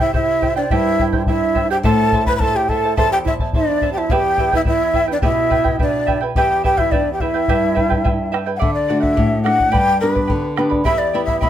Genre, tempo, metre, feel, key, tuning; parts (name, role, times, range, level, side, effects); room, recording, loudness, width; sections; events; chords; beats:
andean folk, Andean ensemble; 106 BPM; 2/4; straight; E minor; A4 = 439 Hz
breathy large quena; melody; 0.0-11.5 s; B4 to B5; -18 LUFS; left 2 dB
breathy hollow large quena; second line; 0.0-8.3 s; D4 to B4; -22 LUFS; right 7 dB
charango; accompaniment; 0.0-11.5 s; E4 to B5; -23 LUFS; right 5 dB
nylon-string guitar; accompaniment; 0.0-11.5 s; E2 to G4; -22 LUFS; left 2 dB
bombo; percussion; 0.1-11.5 s; -21 LUFS; left 1 dB
wet studio reverb, RT60 0.5 s; -14 LUFS; side -11 dB against mid
0.0-8.6 A section; 8.6-11.5 B section
0.0 C; 1.8 Am; 4.1 Em; 8.6 D; 9.7 G; 10.9 Em
0.14 | 0.71 1.28 | 1.84 2.41 | 2.97 3.54 | 4.10 4.66 | 5.23 5.79 | 6.35 6.92 | 7.48 8.04 | 8.61 9.17 | 9.73 10.29 | 10.85 11.41